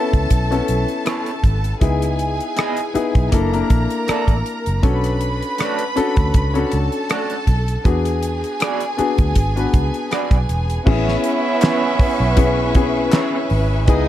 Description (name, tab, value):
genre	lush 1970s-style soul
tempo	80 BPM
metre	4/4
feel	swing 54% on 16ths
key	A major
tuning	A4 = 440 Hz
part	warm studio violin section	second line	0.0-14.1 s	C#4 to B5	-25 LUFS	equal	none
part	clear grand piano	accompaniment	0.0-14.1 s	A#3 to B4	-22 LUFS	left 4 dB	none
part	vintage muted fingered electric bass	bass	0.1-14.1 s	E1 to E2	-20 LUFS	equal	none
part	damped 70s drum kit	drums	0.1-14.1 s	crash cymbal, hi-hat, kick drum, rim click, snare drum	-18 LUFS	equal	none
part	electric guitar through a small old amp	riff	1.1-13.4 s	A3 to D#5	-26 LUFS	right 4 dB	tremolo
part	warm studio string section	sustained chords	10.9-14.1 s	B4 to D#6	-29 LUFS	left 2 dB	none
part	warm horn section	stabs	10.9-14.1 s	G#3 to E4	-22 LUFS	right 4 dB	none
part	group handclap	percussion	11.6-13.3 s	none	-31 LUFS	left 3 dB	none
room	small room ambience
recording	dark, warm production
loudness	-16 LUFS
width	side -12 dB against mid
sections	0.0-10.9 A section; 10.9-14.1 B section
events	none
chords	0.0 Amaj9; 1.8 C#m9; 3.3 F#7alt; 4.8 Bm9; 7.9 E9; 10.9 Amaj9 (rootless)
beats	0.31 1.06 | 1.82 2.57 3.33 4.08 | 4.83 5.59 6.34 7.10 | 7.85 8.61 9.36 10.12 | 10.87 11.62 12.38 13.13 | 13.88